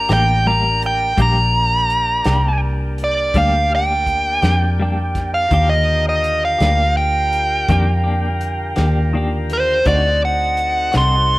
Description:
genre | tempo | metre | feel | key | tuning
slow blues | 55 BPM (dotted quarters) | 12/8 | straight | G minor | A4 = 440 Hz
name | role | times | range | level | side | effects
dark smooth lead guitar | melody | 0.0-11.4 s | C5 to C6 | -17 LUFS | right 1 dB | overdrive
tonewheel organ | sustained chords | 0.0-11.4 s | D3 to Bb4 | -28 LUFS | equal | slow rotary speaker
vintage muted fingered electric bass | bass | 0.0-11.4 s | A1 to F2 | -18 LUFS | equal | none
clean electric guitar | accompaniment | 0.1-11.2 s | D3 to G4 | -24 LUFS | left 2 dB | tremolo
warm soul drum kit | drums | 0.1-11.1 s | hi-hat, kick drum, snare drum | -24 LUFS | equal | none
room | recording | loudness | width
light reverb, small room ambience | rough home demo mix | -14 LUFS | side -19 dB against mid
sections
0.0-11.4 A section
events
none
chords
0.0 Gm; 5.5 Ebmaj7; 9.8 D7b9

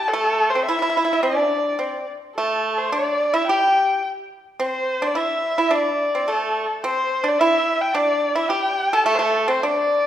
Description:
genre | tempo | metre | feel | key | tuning
chinese traditional, Chinese chamber ensemble | 107 BPM | 4/4 | straight | D shang mode | A4 = 440 Hz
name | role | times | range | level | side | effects
dark erhu | melody | 0.0-10.1 s | A4 to A5 | -20 LUFS | left 1 dB | none
pipa | second line | 0.0-10.1 s | A3 to A4 | -22 LUFS | right 2 dB | none
room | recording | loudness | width
wet recital hall reverb, RT60 1.5 s | none | -18 LUFS | side -11 dB against mid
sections
0.0-10.1 A section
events
none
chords
none

